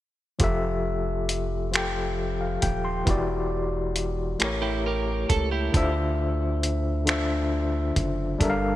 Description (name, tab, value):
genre	slow six-eight R&B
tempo	45 BPM (dotted quarters)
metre	6/8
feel	straight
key	F major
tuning	A4 = 441 Hz
part	overdriven tine electric piano	accompaniment	0.4-8.8 s	D3 to C6	-26 LUFS	left 2 dB	medium tremolo
part	rubbery square bass	bass	0.4-8.8 s	Eb1 to D2	-29 LUFS	right 1 dB	none
part	dusty soul sampler-style drum kit	drums	0.4-8.6 s	finger snaps, hi-hat, kick drum	-27 LUFS	right 1 dB	gated reverb
part	clean electric guitar	second line	4.6-5.9 s	E4 to Bb4	-31 LUFS	right 6 dB	analog chorus
room	light reverb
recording	bright 1980s-style digital production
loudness	-23 LUFS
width	side -14 dB against mid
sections	0.4-8.8 A section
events	none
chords	0.4 Fmaj9; 3.1 Em9; 4.4 A7b9; 5.7 Dm9